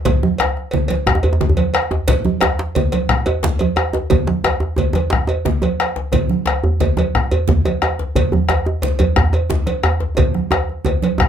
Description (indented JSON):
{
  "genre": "west african traditional, West African drum ensemble",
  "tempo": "118 BPM (dotted quarters)",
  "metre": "12/8",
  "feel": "straight",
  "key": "none",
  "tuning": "none",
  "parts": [
    { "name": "bombo", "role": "percussion", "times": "0.1-11.3 s", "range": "none", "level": "-19 LUFS", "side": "left 3 dB", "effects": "none" },
    { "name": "congas", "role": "percussion", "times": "0.1-11.2 s", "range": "none", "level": "-21 LUFS", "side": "right 6 dB", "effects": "none" },
    { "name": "cowbell", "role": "percussion", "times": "0.1-11.2 s", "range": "none", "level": "-24 LUFS", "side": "right 3 dB", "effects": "none" },
    { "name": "djembe", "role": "percussion", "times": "0.1-11.2 s", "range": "none", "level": "-23 LUFS", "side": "left 4 dB", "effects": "none" },
    { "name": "djembe", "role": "percussion", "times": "0.1-11.3 s", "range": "none", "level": "-19 LUFS", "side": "right 1 dB", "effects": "none" }
  ],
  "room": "wet small room reverb, RT60 0.5 s",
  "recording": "none",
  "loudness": "-15 LUFS",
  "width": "side -9 dB against mid",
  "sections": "0.0-11.3 A section",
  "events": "drum fill 10.2-11.3",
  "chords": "none",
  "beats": "| 0.06 0.56 1.07 1.57 | 2.08 2.59 3.09 3.60 | 4.11 4.61 5.12 5.63 | 6.13 6.64 7.14 7.65 | 8.16 8.66 9.17 9.68 | 10.18 10.69 11.19"
}